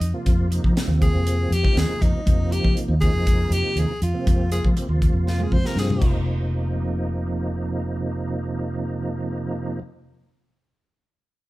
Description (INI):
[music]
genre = electric jazz fusion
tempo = 120 BPM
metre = 4/4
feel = straight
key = F minor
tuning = A4 = 438 Hz
[part]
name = bright tenor saxophone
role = melody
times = 0.0-6.1 s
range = Eb4 to C5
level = -27 LUFS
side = left 1 dB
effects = none
[part]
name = fingered electric bass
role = bass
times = 0.0-9.8 s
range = F1 to F3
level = -23 LUFS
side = equal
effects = none
[part]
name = crisp fusion drum kit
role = drums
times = 0.0-6.1 s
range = crash cymbal, hi-hat, kick drum, snare drum, toms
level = -22 LUFS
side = equal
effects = none
[part]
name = bright tonewheel organ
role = accompaniment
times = 0.1-9.8 s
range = C3 to F4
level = -28 LUFS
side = right 2 dB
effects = slow rotary speaker, chorus vibrato
[sound]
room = light reverb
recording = band playing live in one room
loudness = -20 LUFS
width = side -18 dB against mid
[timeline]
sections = 0.0-6.3 A section; 6.3-10.3 B section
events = tenor saxophone solo 0.0-6.3; drum fill 5.3-6.3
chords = 0.0 Fm7; 6.0 F5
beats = | 0.26 0.76 1.26 1.76 | 2.26 2.76 3.26 3.76 | 4.26 4.76 5.26 5.76 | 6.26 6.76 7.26 7.76 | 8.26 8.76 9.26 9.76